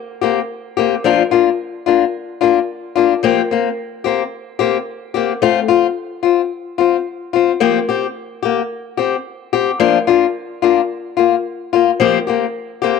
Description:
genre	highlife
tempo	110 BPM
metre	4/4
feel	swing 55% on 16ths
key	unclear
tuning	A4 = 439 Hz
part	picked old ladder-braced acoustic guitar	solo	0.2-13.0 s	F3 to G4	-14 LUFS	left 9 dB	none
room	wet spring reverb, RT60 1.7 s, small room ambience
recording	none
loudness	-14 LUFS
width	side -5 dB against mid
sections	0.0-13.0 A section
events	none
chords	0.0 C7(no3); 1.0 Bb; 3.2 C7(no3); 5.4 F5; 7.6 C7(no3); 9.8 Bb; 12.0 C7sus4

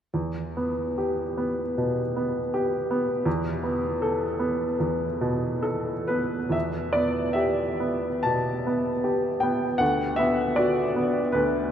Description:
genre	classical, romantic character piece for solo piano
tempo	74 BPM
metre	4/4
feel	uneven beats, rubato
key	E minor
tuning	A4 = 439 Hz
part	clear baby grand piano	solo	0.1-11.7 s	D2 to A5	-23 LUFS	equal	none
room	wet cathedral reverb, RT60 6.8 s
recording	in a vast, echoing space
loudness	-23 LUFS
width	side -9 dB against mid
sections	0.1-6.5 A section; 6.5-11.7 B section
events	none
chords	0.1 Em; 3.3 Esus4; 6.5 Em; 9.8 Bm/D

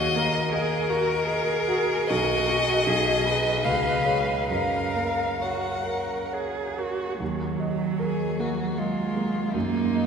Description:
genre	classical, slow romantic movement for piano trio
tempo	65-82 BPM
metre	3/4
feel	rubato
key	F# major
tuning	A4 = 443 Hz
part	warm violin	melody	0.0-10.1 s	Eb4 to F#5	-26 LUFS	left 3 dB	none
part	warm cello	second line	0.0-10.1 s	Gb3 to B4	-28 LUFS	right 4 dB	none
part	warm concert grand piano	accompaniment	0.0-10.1 s	B1 to D#5	-28 LUFS	equal	none
room	wet cathedral reverb, RT60 5.2 s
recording	minimal, uncompressed stereo recording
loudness	-23 LUFS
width	side -6 dB against mid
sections	0.0-7.2 A section; 7.2-10.1 B section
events	none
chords	0.0 D#m; 2.1 B; 2.9 G#m/B; 3.6 C#7; 4.5 F#; 7.2 Ebm; 9.5 Ebm/Gb

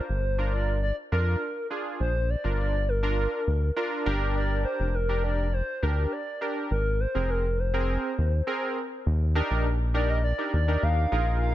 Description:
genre	dance-pop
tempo	102 BPM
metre	4/4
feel	straight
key	Eb major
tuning	A4 = 440 Hz
part	hollow clarinet-like synth lead	melody	0.0-11.5 s	Bb4 to F5	-31 LUFS	left 1 dB	chorus, tape echo
part	warm analog keys	accompaniment	0.0-11.5 s	C4 to Bb4	-31 LUFS	right 1 dB	chorus
part	round analog bass	bass	0.1-11.5 s	F1 to F2	-25 LUFS	equal	none
room	little or no reverb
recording	none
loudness	-24 LUFS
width	side -14 dB against mid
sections	0.0-9.1 A section; 9.1-11.5 B section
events	none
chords	0.0 Bb; 4.1 Gm; 6.7 Abadd9; 9.1 Ebmaj7

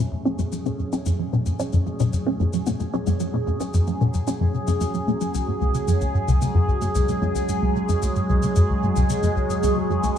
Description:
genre	ambient, sequencer-driven space music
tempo	112 BPM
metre	4/4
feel	straight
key	F# minor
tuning	A4 = 440 Hz
part	phased analog pad	sustained chords	0.0-10.2 s	F#3 to C#5	-26 LUFS	right 1 dB	phaser, chorus
part	resonant blip pluck	riff	0.0-10.1 s	C#2 to C#4	-21 LUFS	equal	phaser, lush chorus, ping-pong delay
part	congas and shaker	percussion	0.3-10.1 s	none	-37 LUFS	left 4 dB	overdrive, ping-pong delay
room	wet cathedral reverb, RT60 5.0 s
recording	in a vast, echoing space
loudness	-20 LUFS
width	side -9 dB against mid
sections	0.0-10.2 A section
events	fade-in on analog synth pad 0.0-10.2; fade-in on drum 0.0-10.2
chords	0.0 F#madd9; 5.3 C#sus4

